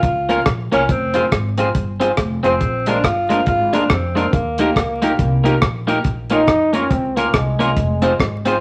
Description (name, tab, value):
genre	ska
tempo	140 BPM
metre	4/4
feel	swing 60% on 8ths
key	Bb dorian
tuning	A4 = 440 Hz
part	warm tenor saxophone	melody	0.0-5.6 s	Bb3 to F4	-22 LUFS	equal	none
part	electric guitar at the edge of break-up	accompaniment	0.0-8.6 s	Ab3 to C5	-22 LUFS	equal	dub echo
part	upright bass	bass	0.0-8.6 s	F1 to F2	-25 LUFS	equal	none
part	deep reggae drum kit	drums	0.0-8.5 s	hi-hat, kick drum, rim click	-22 LUFS	equal	none
part	dark upright piano	stabs	0.3-8.6 s	Bb3 to Bb4	-30 LUFS	equal	none
part	breathy trombone	melody	6.3-8.5 s	Ab3 to Eb4	-21 LUFS	equal	none
room	wet studio reverb, RT60 0.8 s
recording	vinyl crackle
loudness	-17 LUFS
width	mono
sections	0.0-6.0 A section; 6.0-8.6 B section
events	trombone solo 6.0-8.6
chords	0.0 Bbm; 0.9 Fm; 2.6 Bb7; 4.3 Eb; 6.0 Bbm; 7.8 Fm